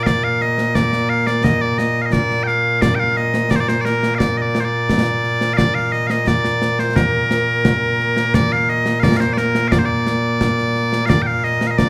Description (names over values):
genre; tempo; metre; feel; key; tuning
scottish traditional, Scottish pipe music; 87 BPM; 2/4; straight; Bb major; A4 = 440 Hz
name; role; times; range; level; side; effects
loud bright bagpipes; melody; 0.0-11.9 s; Bb2 to G5; -19 LUFS; equal; none
concert snare drum and concert bass drum; drums; 0.1-11.9 s; none; -22 LUFS; equal; none
room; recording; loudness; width
light reverb; band playing live in one room; -17 LUFS; mono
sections
0.0-8.3 A section; 8.3-11.9 A section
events
none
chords
none